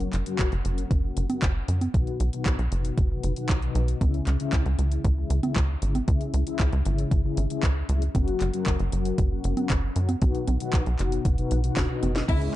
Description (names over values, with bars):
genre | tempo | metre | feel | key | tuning
italo disco | 116 BPM | 4/4 | straight | unclear | A4 = 440 Hz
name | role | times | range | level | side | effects
mellow synth brass | stabs | 0.0-12.6 s | B2 to F#5 | -30 LUFS | left 4 dB | chorus, cassette tape, ping-pong delay
tight sequencer bass | bass | 0.0-12.5 s | F#1 to F#2 | -26 LUFS | equal | none
house drum kit | drums | 0.0-12.5 s | congas, crash cymbal, handclaps, hi-hat, snare drum | -32 LUFS | right 1 dB | overdrive
electronic kick drum | drums | 0.4-12.4 s | none | -25 LUFS | equal | none
rich chamber violin section | melody | 12.3-12.4 s | E4 | -31 LUFS | left 4 dB | none
lush unison pad | sustained chords | 12.3-12.6 s | G#3 to E4 | -32 LUFS | right 3 dB | chorus, phaser, vintage 12-bit sampler grit
room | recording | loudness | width
light reverb | dark, warm production, nothing above 10.5 kHz | -23 LUFS | side -15 dB against mid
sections
0.0-12.6 A section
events
filter sweep on analog polysynth 0.0-12.6; drum fill 11.8-12.3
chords
0.0 F#; 1.9 B; 4.0 C#m; 8.1 F#; 10.2 B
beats
0.39 0.91 1.42 | 1.94 2.46 2.98 3.49 | 4.01 4.53 5.04 5.56 | 6.08 6.60 7.11 7.63 | 8.15 8.67 9.18 9.70 | 10.22 10.73 11.25 11.77 | 12.29